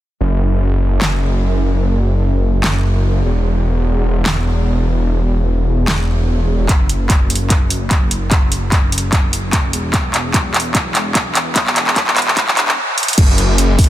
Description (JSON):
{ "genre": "future bass", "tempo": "148 BPM", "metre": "4/4", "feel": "swing 54% on 16ths, half-time", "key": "unclear", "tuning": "A4 = 440 Hz", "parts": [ { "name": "wide detuned saw bass", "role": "bass", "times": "0.2-13.9 s", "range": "E1 to F#1", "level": "-16 LUFS", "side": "equal", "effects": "chorus, sidechain pumping" }, { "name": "pop drum kit", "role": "drums", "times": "1.0-13.9 s", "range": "crash cymbal, handclaps, hi-hat, snare drum", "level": "-17 LUFS", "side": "equal", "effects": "high-pass filter on snare, studio ambience, high-pass filter on hats, high-pass filter on cymbals" }, { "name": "electronic kick drum", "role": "drums", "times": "6.7-13.9 s", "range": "none", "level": "-14 LUFS", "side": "equal", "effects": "studio ambience" } ], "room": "digital ambience", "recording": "dense, heavily limited modern master, high-pass filter", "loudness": "-13 LUFS", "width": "side -14 dB against mid", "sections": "0.2-6.7 A section; 6.7-13.2 B section", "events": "build-up 6.7-13.2; drum fill 6.7-12.8, 13.0; filter sweep 6.7-13.2; stop 12.8-13.2", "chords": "none" }